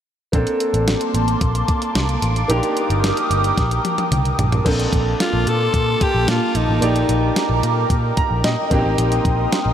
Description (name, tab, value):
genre	1980s-style pop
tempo	111 BPM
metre	4/4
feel	straight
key	Bb major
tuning	A4 = 440 Hz
part	clear grand piano	accompaniment	0.3-9.7 s	Bb3 to Bb5	-22 LUFS	equal	lush chorus, shimmer reverb
part	phased analog pad	sustained chords	0.3-9.7 s	Bb3 to Eb6	-23 LUFS	right 1 dB	phaser, chorus, shimmer reverb
part	vintage muted picked electric bass	bass	0.3-9.7 s	G1 to Bb2	-20 LUFS	equal	none
part	clean 12-bit digital drum machine	drums	0.3-9.7 s	crash cymbal, hi-hat, kick drum, snare drum, toms	-22 LUFS	equal	none
part	raspy alto saxophone	melody	5.2-7.4 s	Eb4 to A4	-23 LUFS	left 1 dB	diffuse ambient delay, shimmer reverb
room	wet huge ambient reverb, RT60 8.8 s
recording	dreamy mix soaked in reverb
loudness	-16 LUFS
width	side -9 dB against mid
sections	0.3-4.7 A section; 4.7-9.7 B section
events	drum fill 3.6-4.7; grand piano fill 7.9-9.0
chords	0.3 Bbmaj9; 2.5 Ebmaj7; 4.4 Bbmaj9; 6.8 Ebmaj7/Bb; 8.7 Cm7